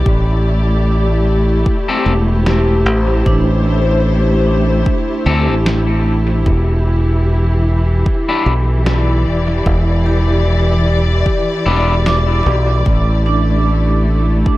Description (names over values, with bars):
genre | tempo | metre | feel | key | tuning
ambient dub | 75 BPM | 4/4 | swing 57% on 16ths | unclear | A4 = 440 Hz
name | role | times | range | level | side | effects
dark studio string section | sustained chords | 0.0-14.6 s | E3 to D5 | -18 LUFS | left 2 dB | vintage 12-bit sampler grit
vibraphone with hard mallets | arpeggios | 0.0-14.6 s | D4 to D6 | -24 LUFS | right 4 dB | tape echo
modern bright fingered electric bass | bass | 0.1-14.4 s | E1 to D2 | -14 LUFS | equal | none
electronic kick drum | drums | 0.1-14.6 s | none | -17 LUFS | equal | overdrive
electric guitar at the edge of break-up | stabs | 1.9-11.9 s | C4 to A4 | -23 LUFS | left 3 dB | dub echo
electronic snare drum | drums | 2.5-12.2 s | none | -23 LUFS | equal | overdrive, dub echo
room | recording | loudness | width
light reverb | none | -12 LUFS | side -17 dB against mid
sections
0.0-14.6 A section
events
none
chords
0.1 Am7; 6.5 Em7; 12.9 A7(no3)